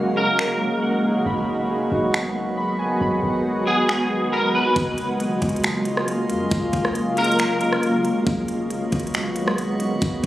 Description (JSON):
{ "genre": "hip hop, atmospheric cloud-rap", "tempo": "137 BPM", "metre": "4/4", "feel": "half-time", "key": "F# major", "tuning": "A4 = 440 Hz", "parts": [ { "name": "shimmering ambient pad", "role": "sustained chords", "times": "0.0-10.3 s", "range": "C#3 to F#4", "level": "-22 LUFS", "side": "equal", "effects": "chorus, built-in reverb, sidechain pumping, low-pass filter" }, { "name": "warbly lo-fi synth keys", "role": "arpeggios", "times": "0.0-4.8 s", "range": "F#3 to B5", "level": "-27 LUFS", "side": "equal", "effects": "chorus, low-pass filter, digital delay" }, { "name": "clean 808-style bass", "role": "bass", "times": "0.0-10.3 s", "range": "F#1 to F#2", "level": "-32 LUFS", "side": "equal", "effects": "none" }, { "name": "drifting glass-harmonics texture", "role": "texture", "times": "0.0-10.3 s", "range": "G#3 to B4", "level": "-31 LUFS", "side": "right 1 dB", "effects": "chorus, built-in reverb" }, { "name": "electric guitar at the edge of break-up", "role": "melody", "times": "0.2-8.2 s", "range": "G#4 to B4", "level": "-24 LUFS", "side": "equal", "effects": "ensemble chorus, low-pass filter, digital delay" }, { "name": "trap drum kit", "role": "drums", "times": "0.4-10.3 s", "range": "finger snaps, hi-hat, kick drum, rim click", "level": "-26 LUFS", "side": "equal", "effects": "none" } ], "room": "light reverb, digital ambience", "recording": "recorded on a phone in the room, studio reverb, compression", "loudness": "-19 LUFS", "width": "side -14 dB against mid", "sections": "0.0-4.8 A section; 4.8-10.3 B section", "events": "none", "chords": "0.0 F#maj9; 1.3 G#m7; 4.8 F#maj9; 8.3 G#m7" }